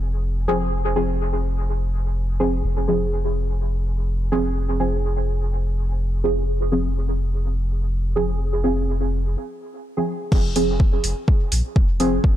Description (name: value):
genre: dub techno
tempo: 125 BPM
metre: 4/4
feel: swing 55% on 16ths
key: F minor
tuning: A4 = 442 Hz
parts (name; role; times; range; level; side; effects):
- deep mellow chord stab; stabs; 0.0-12.1 s; F3 to Ab4; -24 LUFS; right 1 dB; chorus, phaser, sidechain pumping, dub echo
- soft dub sub bass; bass; 0.0-12.4 s; F1 to Bb1; -23 LUFS; equal; tube saturation, sidechain pumping
- deep house drum kit; drums; 10.3-12.1 s; crash cymbal, hi-hat; -28 LUFS; equal; overdrive
- electronic kick drum; drums; 10.3-12.3 s; none; -17 LUFS; equal; overdrive
room: digital ambience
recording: dark, warm production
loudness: -20 LUFS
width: side -12 dB against mid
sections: 0.0-10.3 A section; 10.3-12.4 B section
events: break 9.4-10.3; filter sweep on synth stab 10.3-12.4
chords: 0.0 Fm